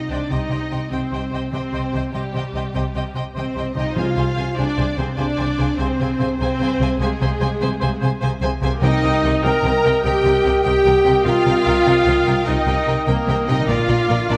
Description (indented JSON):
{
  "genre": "cinematic",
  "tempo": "99 BPM (dotted quarters)",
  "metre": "12/8",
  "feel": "straight",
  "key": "unclear",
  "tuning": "A4 = 440 Hz",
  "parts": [
    { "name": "warm studio violin section", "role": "melody", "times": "0.0-14.4 s", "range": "G4 to Bb5", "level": "-31 LUFS", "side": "equal", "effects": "none" },
    { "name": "rich symphonic viola section", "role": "accompaniment", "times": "0.0-14.4 s", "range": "G3 to Bb4", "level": "-29 LUFS", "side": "equal", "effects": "none" },
    { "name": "mellow French horn section", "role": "sustained chords", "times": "0.0-14.4 s", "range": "G3 to Bb4", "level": "-23 LUFS", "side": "equal", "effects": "none" },
    { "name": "concert harp", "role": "arpeggios", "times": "0.0-14.4 s", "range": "Bb2 to Eb5", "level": "-34 LUFS", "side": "equal", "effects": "none" },
    { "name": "dark clarinet", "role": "second line", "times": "0.1-14.4 s", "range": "G4 to Bb4", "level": "-35 LUFS", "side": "equal", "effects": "none" },
    { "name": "mellow cor anglais", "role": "second line", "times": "0.1-14.4 s", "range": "C5 to Eb5", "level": "-33 LUFS", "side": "equal", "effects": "none" },
    { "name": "mellow flute section", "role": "second line", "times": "0.1-14.4 s", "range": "Eb5 to G5", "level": "-34 LUFS", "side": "equal", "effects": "none" },
    { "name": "warm symphonic violin section", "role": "second line", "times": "0.1-14.4 s", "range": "Bb4 to Ab5", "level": "-32 LUFS", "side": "equal", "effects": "none" },
    { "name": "dark symphonic cello section", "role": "bass", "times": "0.1-14.4 s", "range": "Bb2 to C3", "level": "-28 LUFS", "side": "equal", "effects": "none" },
    { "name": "warm symphonic double bass section", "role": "bass", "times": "0.1-14.4 s", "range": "Bb1 to C2", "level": "-26 LUFS", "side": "equal", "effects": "none" },
    { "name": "timpani", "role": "percussion", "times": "4.0-4.5, 8.8-9.4 s", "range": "C3", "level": "-30 LUFS", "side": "equal", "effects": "none" }
  ],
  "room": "moderate scoring stage reverb, RT60 1.8 s",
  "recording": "none",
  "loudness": "-19 LUFS",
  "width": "mono",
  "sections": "0.0-14.4 A section",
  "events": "none",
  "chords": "0.0 Cm; 4.0 Fm/C; 8.8 Eb/C; 13.7 Bb",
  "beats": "0.31 0.92 | 1.53 2.14 2.75 3.36 | 3.97 4.57 5.18 5.79 | 6.40 7.00 7.61 8.21 | 8.82 9.44 10.04 10.65 | 11.25 11.86 12.47 13.08 | 13.69 14.30"
}